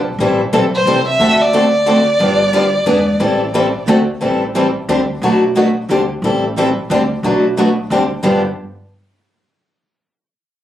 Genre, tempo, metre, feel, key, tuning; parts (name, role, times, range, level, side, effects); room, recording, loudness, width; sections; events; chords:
acoustic string swing (jazz manouche); 179 BPM; 3/4; swing 60% on 8ths; G major; A4 = 441 Hz
dark violin; melody; 0.0-3.9 s; C5 to E5; -15 LUFS; equal; plate reverb
upright bass; bass; 0.0-8.4 s; E1 to D2; -21 LUFS; equal
picked steel-string acoustic guitar; accompaniment; 0.2-8.4 s; G2 to B4; -19 LUFS; right 2 dB
picked swing-style acoustic guitar; accompaniment; 0.2-8.4 s; G2 to A4; -16 LUFS; left 2 dB
moderate studio reverb, RT60 0.6 s; recorded on a phone in the room, club reverb; -12 LUFS; side -12 dB against mid
0.0-4.2 A section; 4.2-8.2 B section; 8.2-9.3 C section
0.2 Am7; 1.2 D7; 2.2 G7; 2.9 E7; 3.2 Am7; 3.9 D7; 4.2 Am7; 4.9 D7sus4; 5.2 Bm7; 5.9 D7sus4; 6.2 Am7; 6.9 D7sus4; 7.2 Bm7; 7.9 D7sus4; 8.2 G7